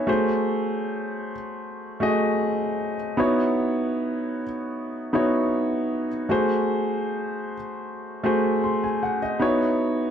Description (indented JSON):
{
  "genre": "soul",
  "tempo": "77 BPM",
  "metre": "4/4",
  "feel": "straight",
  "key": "C# minor",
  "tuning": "A4 = 440 Hz",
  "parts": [
    { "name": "warm grand piano", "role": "solo", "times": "0.0-10.1 s", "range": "A3 to B#5", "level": "-22 LUFS", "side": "equal", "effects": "none" }
  ],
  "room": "light reverb",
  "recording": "dark, warm production",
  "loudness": "-22 LUFS",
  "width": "side -8 dB against mid",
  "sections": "0.0-10.1 A section",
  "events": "none",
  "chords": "0.1 G#7b9; 3.2 C#m11; 6.3 G#7b9; 9.4 C#m11"
}